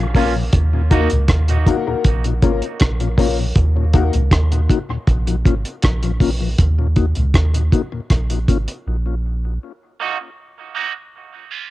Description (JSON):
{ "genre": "dub reggae", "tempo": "79 BPM", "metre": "4/4", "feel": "straight", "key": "Eb minor", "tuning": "A4 = 440 Hz", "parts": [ { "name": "mellow tonewheel organ", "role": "accompaniment", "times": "0.0-8.6 s", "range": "Eb2 to Gb4", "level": "-24 LUFS", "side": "left 6 dB", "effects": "slow rotary speaker, high-pass filter, cassette tape, dub echo" }, { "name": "soft dub sub bass", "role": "bass", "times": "0.0-9.6 s", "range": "Ab1 to Eb2", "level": "-18 LUFS", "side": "right 1 dB", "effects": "tube saturation" }, { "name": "deep reggae drum kit", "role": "drums", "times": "0.1-8.8 s", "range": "hi-hat, kick drum, rim click", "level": "-16 LUFS", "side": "right 1 dB", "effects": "cassette tape" }, { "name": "electric guitar at the edge of break-up", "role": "accompaniment", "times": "0.2-1.1, 10.0-11.7 s", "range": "Bb3 to Gb4", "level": "-26 LUFS", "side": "right 8 dB", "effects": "high-pass filter, cassette tape, dub echo" }, { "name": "clear upright piano", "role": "stabs", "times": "0.2-4.1 s", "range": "Bb3 to Bb4", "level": "-24 LUFS", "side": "left 6 dB", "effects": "cassette tape, dub echo" } ], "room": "studio reverb", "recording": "home recording on cassette", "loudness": "-15 LUFS", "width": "side -16 dB against mid", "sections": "0.0-9.6 A section; 9.6-11.7 B section", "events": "filter sweep 6.6-11.7; break 8.9-9.6, 9.6-11.7", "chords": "0.0 Bbm; 0.5 Ebm; 2.0 Bbm; 3.6 Ebm; 5.1 Bb5; 6.6 Eb5; 8.1 N.C.; 9.6 Ebm; 11.1 Bbm", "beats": "| 0.53 1.29 2.04 2.80 | 3.56 4.32 5.07 5.83 | 6.58 7.34 8.10 8.86 | 9.62 10.37 11.13" }